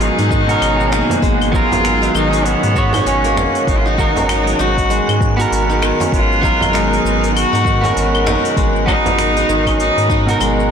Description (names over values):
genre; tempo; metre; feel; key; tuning
organic downtempo; 98 BPM; 4/4; swing 59% on 16ths; G# minor; A4 = 437 Hz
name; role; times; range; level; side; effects
clear cello; melody; 0.0-10.4 s; A#3 to F#4; -18 LUFS; left 2 dB; vintage 12-bit sampler grit, tape echo
clean electric guitar; accompaniment; 0.0-10.7 s; B2 to C#5; -20 LUFS; right 3 dB; spring reverb, sidechain pumping, tape echo
clear studio string section; sustained chords; 0.0-10.7 s; B2 to A#4; -24 LUFS; left 1 dB; sidechain pumping
steel-string zither; arpeggios; 0.0-10.7 s; D#3 to D#4; -21 LUFS; equal; tape echo
warm sub bass; bass; 0.0-10.7 s; G#1 to G#2; -20 LUFS; equal; none
deep house drum kit; drums; 0.0-10.7 s; claves, finger snaps, hi-hat, shaker; -26 LUFS; left 4 dB; soft clipping on snare
wind-like tuned noise texture; texture; 0.0-10.7 s; F#6; -29 LUFS; right 4 dB; built-in reverb
electronic kick drum; drums; 0.3-10.2 s; none; -19 LUFS; equal; none
frame drum; percussion; 1.1-9.2 s; none; -25 LUFS; right 3 dB; none
room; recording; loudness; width
light reverb, small room ambience; blown-out, overdriven recording, overdrive; -12 LUFS; side -7 dB against mid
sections
0.0-10.7 A section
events
none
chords
0.0 G#m7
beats
0.00 0.61 | 1.23 1.84 2.45 3.06 | 3.68 4.29 4.90 5.51 | 6.12 6.74 7.35 7.96 | 8.57 9.19 9.80 10.41